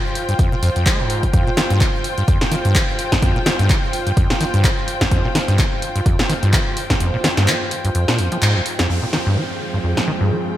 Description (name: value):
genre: acid house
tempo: 127 BPM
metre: 4/4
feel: swing 56% on 16ths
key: F minor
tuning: A4 = 442 Hz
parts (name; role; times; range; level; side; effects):
- dark studio string section; texture; 0.0-10.6 s; F4 to G5; -25 LUFS; equal; sidechain pumping
- punchy analog drum machine; drums; 0.2-10.1 s; handclaps, hi-hat, snare drum; -21 LUFS; equal; gated reverb
- acid bass, saw; riff; 0.3-10.4 s; F2 to Ab3; -20 LUFS; equal; tube saturation, digital delay
- electronic kick drum; drums; 0.4-7.0 s; none; -18 LUFS; equal; overdrive
- lush unison pad; sustained chords; 8.9-10.6 s; F3 to Ab4; -26 LUFS; right 2 dB; chorus, sidechain pumping
- downlifter; sound effects; 8.9-10.6 s; none; -30 LUFS; right 1 dB; none
room: moderate lush hall reverb, RT60 1.8 s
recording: bright 1980s-style digital production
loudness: -15 LUFS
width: side -13 dB against mid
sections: 0.0-8.9 A section; 8.9-10.6 B section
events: kick drops out 7.0-8.9; band accent 8.4; filter sweep on analog synth pad 8.9-10.6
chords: 0.0 F5; 8.9 Fm